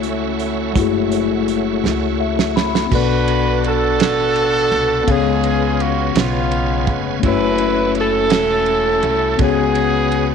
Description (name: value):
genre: slow gospel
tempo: 56 BPM (dotted quarters)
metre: 6/8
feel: straight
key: F# minor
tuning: A4 = 441 Hz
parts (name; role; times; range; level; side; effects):
- mellow tine electric piano; accompaniment; 0.0-10.3 s; B2 to B5; -19 LUFS; left 11 dB; medium stereo tremolo
- bright tonewheel organ; sustained chords; 0.0-10.3 s; A3 to A5; -26 LUFS; right 13 dB; slow rotary speaker, chorus vibrato
- rich studio string section; sustained chords; 0.0-2.9 s; A3 to F#4; -30 LUFS; right 2 dB; none
- upright bass; bass; 0.0-10.3 s; E1 to C#2; -24 LUFS; right 1 dB; none
- warm soul drum kit; drums; 0.0-10.3 s; crash cymbal, hi-hat, kick drum, ride cymbal, snare drum; -23 LUFS; right 6 dB; none
- warm horn section; melody; 2.9-10.3 s; G#3 to B4; -17 LUFS; right 2 dB; none
room: moderate echo chamber reverb, RT60 1.4 s, small room ambience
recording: 1960s-style stereo with parts hard left and right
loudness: -14 LUFS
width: side -6 dB against mid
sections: 0.0-2.9 A section; 2.9-10.3 B section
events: drum fill 1.8-2.9; tine electric piano fill 1.8-2.9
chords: 0.0 F#m7; 2.9 Bm7; 5.1 C#7; 7.2 F#m7; 9.4 C#7sus4